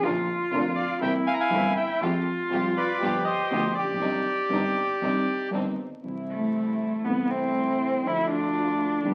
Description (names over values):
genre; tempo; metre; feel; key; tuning
tango; 120 BPM; 4/4; rubato; C major from 6.0 s; A4 = 440 Hz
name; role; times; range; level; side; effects
warm cello; second line; 0.0-9.1 s; G3 to G4; -29 LUFS; equal; none
dark concert grand piano; accompaniment; 0.0-9.1 s; F1 to G4; -32 LUFS; equal; none
dark chamber string section; stabs; 0.0-9.1 s; G3 to Bb4; -37 LUFS; equal; none
clear double bass; bass; 0.0-9.1 s; F1 to F2; -40 LUFS; equal; none
bandoneon; melody; 0.8-5.5 s; G4 to Bb5; -29 LUFS; equal; none
room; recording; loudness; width
wet large studio reverb, RT60 0.9 s; very old 78 rpm record, vinyl crackle; -26 LUFS; mono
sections
0.0-6.0 A section; 6.0-9.1 B section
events
cello solo 6.0-9.1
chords
0.0 Bb; 1.0 C7; 2.0 Fmadd9; 3.0 G7; 4.0 Cmadd9; 6.0 C; 7.0 Am/C; 8.0 Dm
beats
| 0.03 0.52 1.02 1.52 | 2.02 2.52 3.02 3.52 | 4.02 4.51 5.02 5.53 | 6.04 6.54 7.04 7.55 | 8.05 8.54 9.04